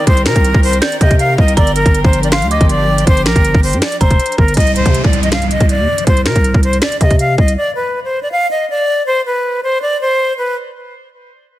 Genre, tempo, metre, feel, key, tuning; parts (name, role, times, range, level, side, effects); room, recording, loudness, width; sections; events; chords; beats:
hip hop, trap; 160 BPM; 4/4; half-time; C minor; A4 = 440 Hz
breathy bright silver concert flute; melody; 0.0-10.6 s; Bb4 to F5; -16 LUFS; left 1 dB
dark detuned synth bell; second line; 0.0-4.5 s; Bb5 to G6; -24 LUFS; right 4 dB; chorus, digital delay
muted studio string section; sustained chords; 0.0-4.5 s; Eb3 to Bb4; -23 LUFS; left 1 dB
growling 808-style bass; bass; 0.1-7.6 s; F1 to C3; -16 LUFS; equal
trap drum kit; drums; 0.1-7.6 s; finger snaps, hi-hat, kick drum, snare drum; -12 LUFS; equal; vintage 12-bit sampler grit, soft clipping on snare
downlifter; sound effects; 4.6-7.6 s; -23 LUFS; right 1 dB
little or no reverb; dense, heavily limited modern master; -11 LUFS; side -15 dB against mid
0.0-4.6 A section; 4.6-10.6 B section; 10.6-11.6 C section
0.0 Cm7; 1.6 Gm7; 4.6 Cm; 7.6 N.C.
| 0.07 0.45 0.82 1.20 | 1.57 1.95 2.32 2.69 | 3.07 3.44 3.82 4.20 | 4.57 4.95 5.32 5.70 | 6.07 6.45 6.82 7.20 | 7.57 7.95 8.32 8.70 | 9.07 9.45 9.82 10.20